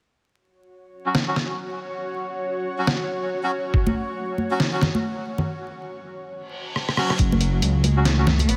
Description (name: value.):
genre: deep dubstep.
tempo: 139 BPM.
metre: 4/4.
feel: swing 59% on 16ths, half-time.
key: F# minor.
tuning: A4 = 440 Hz.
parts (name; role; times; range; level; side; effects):
granular cloud pad; sustained chords; 1.0-8.6 s; F#4 to C#5; -34 LUFS; equal; built-in reverb.
melodica; stabs; 1.1-8.3 s; F#3 to F#4; -32 LUFS; equal; low-pass filter, dub echo.
trip hop sampler-style drum kit; drums; 1.1-8.6 s; hi-hat, rim click, snare drum; -26 LUFS; equal; studio reverb.
electronic kick drum; drums; 3.7-3.8, 7.2-7.3 s; none; -24 LUFS; equal; studio reverb.
congas; percussion; 3.9-8.5 s; none; -28 LUFS; equal; dub echo.
reverse cymbal; sound effects; 6.5-7.2 s; none; -35 LUFS; equal; none.
dark cello; melody; 7.0-8.6 s; F#3 to B3; -29 LUFS; equal; none.
dark detuned saw bass; bass; 7.2-8.6 s; F#1 to C#2; -22 LUFS; equal; none.
room: light reverb.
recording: vinyl crackle.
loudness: -23 LUFS.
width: mono.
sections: 0.3-7.2 A section; 7.2-8.6 B section.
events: break 5.5-7.2; reverse cymbal 6.5-7.2; drum fill 6.8-7.2.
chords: 0.3 F#5.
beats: | 0.29 0.72 1.15 1.58 | 2.01 2.44 2.88 3.31 | 3.74 4.17 4.60 5.03 | 5.47 5.90 6.33 6.76 | 7.19 7.62 8.06 8.49.